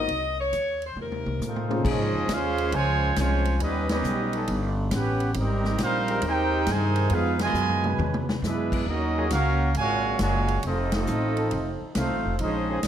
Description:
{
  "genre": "jazz, big band swing",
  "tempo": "136 BPM",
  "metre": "4/4",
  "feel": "swing 66% on 8ths",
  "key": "Bb minor",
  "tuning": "A4 = 442 Hz",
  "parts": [
    { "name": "edgy saxophone section", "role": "melody", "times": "0.0-1.7 s", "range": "Bb4 to Eb5", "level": "-28 LUFS", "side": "left 2 dB", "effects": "none" },
    { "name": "dark baby grand piano", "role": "accompaniment", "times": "0.0-2.3 s", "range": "Bb3 to C5", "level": "-31 LUFS", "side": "left 3 dB", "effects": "none" },
    { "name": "upright bass", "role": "bass", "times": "0.0-12.9 s", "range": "F1 to Bb2", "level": "-28 LUFS", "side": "equal", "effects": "none" },
    { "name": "swinging big-band drum kit", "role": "drums", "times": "0.1-12.9 s", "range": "crash cymbal, hi-hat, kick drum, ride cymbal, snare drum, toms", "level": "-32 LUFS", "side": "left 1 dB", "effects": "none" },
    { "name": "brilliant trombone section", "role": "second line", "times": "1.0-12.9 s", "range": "Bb2 to Ab4", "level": "-29 LUFS", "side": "right 2 dB", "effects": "none" },
    { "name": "warm trumpet section", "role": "melody", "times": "1.5-12.8 s", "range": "C4 to Ab5", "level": "-28 LUFS", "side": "right 2 dB", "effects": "none" },
    { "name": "warm trombone section", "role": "sustained chords", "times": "1.8-12.8 s", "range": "Db3 to B4", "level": "-34 LUFS", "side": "left 1 dB", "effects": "none" }
  ],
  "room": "moderate large studio reverb, RT60 1.1 s",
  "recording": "none",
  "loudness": "-23 LUFS",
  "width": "side -10 dB against mid",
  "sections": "0.0-1.8 A section; 1.8-12.9 B section",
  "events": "drum fill 1.0-1.8, 7.6-8.4; band accent 3.8, 7.3, 10.9",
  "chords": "0.1 Cm; 1.0 F7; 1.8 Bbm9; 3.6 Eb7alt; 5.4 Abmaj9; 7.1 Fm7b5; 8.0 E13; 8.9 Ebm11; 10.6 F7"
}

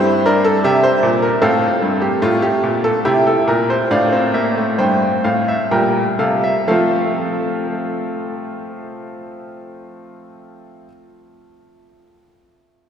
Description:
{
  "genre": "classical, baroque-style 4-part fugue for grand piano",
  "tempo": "60-78 BPM",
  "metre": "4/4",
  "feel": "straight",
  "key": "F major",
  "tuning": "A4 = 441 Hz",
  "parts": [
    { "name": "bright baby grand piano", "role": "solo", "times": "0.0-10.9 s", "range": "G2 to G5", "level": "-15 LUFS", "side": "equal", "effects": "none" }
  ],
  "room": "wet cathedral reverb, RT60 5.1 s",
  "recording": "heard from further back in the room",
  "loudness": "-14 LUFS",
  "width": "side -8 dB against mid",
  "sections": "0.0-6.7 A section; 6.7-10.7 B section",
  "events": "slowing down 0.0-6.7",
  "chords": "0.0 C7/G; 1.4 F; 3.1 C7; 6.7 F"
}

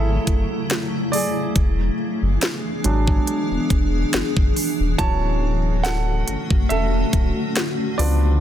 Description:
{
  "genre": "contemporary R&B",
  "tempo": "70 BPM",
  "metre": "4/4",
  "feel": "swing 54% on 16ths",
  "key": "unclear",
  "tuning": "A4 = 444 Hz",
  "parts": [
    { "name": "warm baby grand piano", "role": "accompaniment", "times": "0.0-8.4 s", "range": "E3 to A5", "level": "-26 LUFS", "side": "right 3 dB", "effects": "none" },
    { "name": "granular cloud pad", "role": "sustained chords", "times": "0.0-8.4 s", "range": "C#3 to G#4", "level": "-24 LUFS", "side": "left 2 dB", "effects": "built-in reverb" },
    { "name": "warm sub bass", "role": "bass", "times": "0.0-8.4 s", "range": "D1 to C#2", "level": "-21 LUFS", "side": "equal", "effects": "none" },
    { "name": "trap drum kit", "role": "drums", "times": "0.3-8.2 s", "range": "hi-hat, kick drum, snare drum", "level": "-21 LUFS", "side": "equal", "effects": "soft clipping on snare" }
  ],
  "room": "little or no reverb",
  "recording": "dense, heavily limited modern master",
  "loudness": "-18 LUFS",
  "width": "side -10 dB against mid",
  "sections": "0.0-8.4 A section",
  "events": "grand piano solo 0.0-8.4",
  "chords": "0.0 F#m7; 1.6 E7; 5.0 Dmaj7"
}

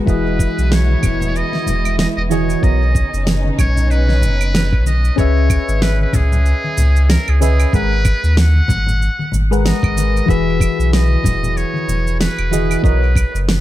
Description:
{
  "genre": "sunset chillout",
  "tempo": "94 BPM",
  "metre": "4/4",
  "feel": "swing 58% on 16ths",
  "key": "unclear",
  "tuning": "A4 = 439 Hz",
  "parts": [
    { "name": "soft electric-piano-like synth keys", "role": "accompaniment", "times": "0.0-13.0 s", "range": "E3 to F#5", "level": "-21 LUFS", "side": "moving between left 6 dB and right 5 dB", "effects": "chorus, auto-pan, tape echo" },
    { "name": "warm studio string section", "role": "sustained chords", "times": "0.0-5.2 s", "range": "C#3 to E4", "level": "-25 LUFS", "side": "equal", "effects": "vintage 12-bit sampler grit" },
    { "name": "trumpet with metal mute", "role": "melody", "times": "0.1-13.4 s", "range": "G#4 to F#5", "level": "-23 LUFS", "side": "right 1 dB", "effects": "tape echo" },
    { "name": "warm sub bass", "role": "bass", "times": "0.1-13.6 s", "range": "E1 to D#2", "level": "-15 LUFS", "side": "equal", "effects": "none" },
    { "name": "electronic cabasa, snare drum and claves", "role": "drums", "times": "0.1-13.6 s", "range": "none", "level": "-22 LUFS", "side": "right 2 dB", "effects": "tape echo" },
    { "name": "electronic kick drum", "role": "drums", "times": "0.1-13.3 s", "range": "none", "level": "-16 LUFS", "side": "equal", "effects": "overdrive" },
    { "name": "congas", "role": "percussion", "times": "0.9-12.7 s", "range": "none", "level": "-26 LUFS", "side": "left 3 dB", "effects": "tape echo" }
  ],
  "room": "light reverb, small room reverb",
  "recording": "echo-heavy mix",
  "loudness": "-13 LUFS",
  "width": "side -14 dB against mid",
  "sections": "0.0-5.2 A section; 5.2-13.6 B section",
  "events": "band accent 4.5-4.9",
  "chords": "0.1 Emaj7; 2.6 Bmaj9; 5.2 C#m7; 7.7 G#m7; 10.3 Emaj7; 12.8 Bmaj9"
}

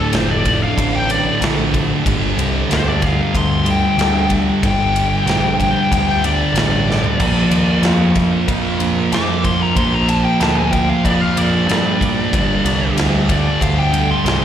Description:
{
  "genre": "stoner and doom metal",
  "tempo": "93 BPM",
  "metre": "4/4",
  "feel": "straight",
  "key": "unclear",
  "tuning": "A4 = 440 Hz",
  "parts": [
    { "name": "fuzz lead guitar", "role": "melody", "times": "0.0-14.4 s", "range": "A4 to D6", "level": "-20 LUFS", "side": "left 3 dB", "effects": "wah, distortion, slapback echo, digital delay" },
    { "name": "string machine, violins", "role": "sustained chords", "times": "0.0-14.4 s", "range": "G3 to D5", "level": "-30 LUFS", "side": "left 1 dB", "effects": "none" },
    { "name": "thick fuzz guitar", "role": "riff", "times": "0.0-14.4 s", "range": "D2 to Bb3", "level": "-22 LUFS", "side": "left 6 dB", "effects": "distortion, slapback echo" },
    { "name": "thick fuzz guitar", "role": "riff", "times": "0.0-14.4 s", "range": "D2 to Bb3", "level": "-19 LUFS", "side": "right 6 dB", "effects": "distortion, slapback echo" },
    { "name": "growling picked electric bass", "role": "bass", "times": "0.1-14.4 s", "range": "F1 to G2", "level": "-20 LUFS", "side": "equal", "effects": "overdrive" },
    { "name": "big rock drum kit", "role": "drums", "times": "0.1-14.4 s", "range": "crash cymbal, kick drum, ride cymbal, snare drum, toms", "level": "-21 LUFS", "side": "equal", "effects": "none" }
  ],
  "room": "small room reverb",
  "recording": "live gig heard through the venue's PA, recital hall reverb",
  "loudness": "-14 LUFS",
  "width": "side -10 dB against mid",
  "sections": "0.0-14.4 A section",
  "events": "lead electric guitar solo 0.0-14.4; drum fill 6.9-7.2",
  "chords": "0.0 Dm; 2.1 G5; 7.2 Bb; 12.3 G5"
}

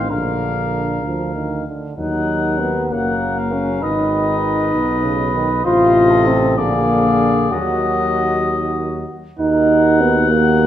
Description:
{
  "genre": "classical, brass quintet",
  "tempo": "64 BPM (dotted quarters)",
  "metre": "6/8",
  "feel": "straight",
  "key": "Eb minor",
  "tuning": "A4 = 441 Hz",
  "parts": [
    { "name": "clear trumpet", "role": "melody", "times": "0.0-10.7 s", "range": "D5 to Gb5", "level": "-23 LUFS", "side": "left 6 dB", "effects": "none" },
    { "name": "warm flugelhorn", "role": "second line", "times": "0.0-10.7 s", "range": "Gb4 to C5", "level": "-24 LUFS", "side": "right 5 dB", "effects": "none" },
    { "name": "warm French horn", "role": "accompaniment", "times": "0.0-10.7 s", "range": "Gb3 to Gb4", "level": "-19 LUFS", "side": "left 2 dB", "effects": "none" },
    { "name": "warm euphonium", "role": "accompaniment", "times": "0.0-10.7 s", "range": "Cb3 to Eb4", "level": "-21 LUFS", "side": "right 3 dB", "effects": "none" },
    { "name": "warm bass trombone", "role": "bass", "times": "0.0-10.7 s", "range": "Gb1 to Eb2", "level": "-22 LUFS", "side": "right 1 dB", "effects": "none" }
  ],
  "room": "wet recital hall reverb, RT60 1.5 s",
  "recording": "none",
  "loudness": "-15 LUFS",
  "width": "side -11 dB against mid",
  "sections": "0.0-9.4 A section; 9.4-10.7 B section",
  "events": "none",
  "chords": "0.1 Bb; 2.0 Ebm; 3.8 Abm; 5.7 F7/A; 6.6 Bb7; 7.5 Ebm"
}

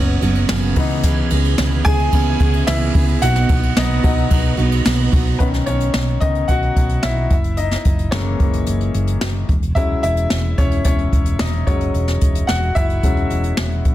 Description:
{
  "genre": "piano-driven pop",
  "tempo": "110 BPM",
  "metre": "4/4",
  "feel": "straight",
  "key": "B major",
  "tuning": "A4 = 440 Hz",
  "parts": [
    { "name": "bright upright piano", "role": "accompaniment", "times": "0.0-13.9 s", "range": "D#3 to G#5", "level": "-22 LUFS", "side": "left 2 dB", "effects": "none" },
    { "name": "picked steel-string acoustic guitar", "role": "riff", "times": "0.0-5.4 s", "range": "F#2 to G#4", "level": "-21 LUFS", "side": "right 5 dB", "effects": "none" },
    { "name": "hollow-body short-scale fingered electric bass", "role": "bass", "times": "0.0-13.9 s", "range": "E1 to C#2", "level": "-20 LUFS", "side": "equal", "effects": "none" },
    { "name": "jazz brush drum kit", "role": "drums", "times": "0.2-13.9 s", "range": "hi-hat, kick drum, ride cymbal, snare drum", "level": "-18 LUFS", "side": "equal", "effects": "soft clipping on snare" }
  ],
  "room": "light reverb, small room ambience",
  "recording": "dense, heavily limited modern master",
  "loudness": "-15 LUFS",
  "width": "side -14 dB against mid",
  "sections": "0.0-5.4 A section; 5.4-13.9 B section",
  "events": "upright piano solo 0.0-5.4, 5.4-13.9",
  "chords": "0.0 F#sus4; 0.8 C#m7; 3.2 B; 5.4 Badd9; 7.3 F#7; 9.5 E6"
}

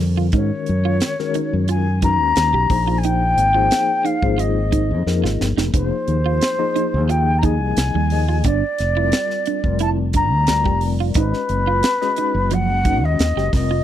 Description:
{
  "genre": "electric jazz fusion",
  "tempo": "89 BPM",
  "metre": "4/4",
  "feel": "straight",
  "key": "unclear",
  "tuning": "A4 = 440 Hz",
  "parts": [
    { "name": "mellow tine electric piano", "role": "accompaniment", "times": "0.0-13.8 s", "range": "D3 to Eb5", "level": "-25 LUFS", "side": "left 10 dB", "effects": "medium tremolo, phaser" },
    { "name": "fingered electric bass", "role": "bass", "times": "0.0-13.8 s", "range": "F1 to Ab2", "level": "-19 LUFS", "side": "equal", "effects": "none" },
    { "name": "tight funk drum kit", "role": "drums", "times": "0.0-13.7 s", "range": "hi-hat, kick drum, snare drum", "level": "-22 LUFS", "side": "right 1 dB", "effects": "none" },
    { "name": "clean electric guitar", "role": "stabs", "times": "0.2-13.8 s", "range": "F3 to G4", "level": "-25 LUFS", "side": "right 14 dB", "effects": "analog chorus" },
    { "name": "mellow jazz flute", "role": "melody", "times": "0.4-13.8 s", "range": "Cb5 to Bb5", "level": "-20 LUFS", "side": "left 2 dB", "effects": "slapback echo" }
  ],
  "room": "little or no reverb",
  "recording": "dry, close 1970s-style studio recording",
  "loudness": "-16 LUFS",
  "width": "side -11 dB against mid",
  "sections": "0.0-13.8 A section",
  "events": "drum fill 5.1-5.7",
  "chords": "0.3 Abm9; 2.7 Fm9; 8.5 Gm7; 11.2 Abm7"
}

